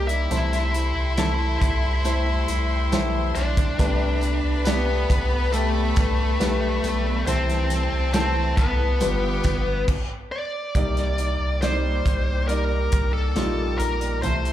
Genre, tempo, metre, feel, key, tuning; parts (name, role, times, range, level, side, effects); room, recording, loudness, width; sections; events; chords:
pop ballad; 69 BPM; 4/4; straight; A4 = 440 Hz
bluesy overdriven lead guitar; melody; 0.0-14.5 s; A3 to E5; -26 LUFS; left 3 dB; distortion, slapback echo
bright studio violin section; second line; 0.0-9.9 s; G4 to C6; -34 LUFS; equal; slapback echo
warm baby grand piano; accompaniment; 0.0-14.5 s; G2 to D5; -29 LUFS; equal; slapback echo
warm symphonic string section; sustained chords; 0.0-14.5 s; Bb3 to D6; -38 LUFS; left 5 dB
picked steel-string acoustic guitar; arpeggios; 0.0-14.5 s; G2 to D5; -33 LUFS; right 4 dB
warm sub bass; bass; 0.0-14.5 s; G1 to C2; -24 LUFS; equal
modern studio drum kit; drums; 0.1-14.5 s; crash cymbal, hi-hat, kick drum, snare drum; -26 LUFS; equal
tambourine; percussion; 0.3-9.6 s; -41 LUFS; right 4 dB
small room ambience; live gig heard through the venue's PA, club reverb; -20 LUFS; side -12 dB against mid
0.0-10.7 A section; 10.7-14.5 A section
stop 9.9-10.7
0.3 C6; 3.8 Gadd9/C; 7.3 C6; 9.0 G7; 10.7 Ebmaj7/C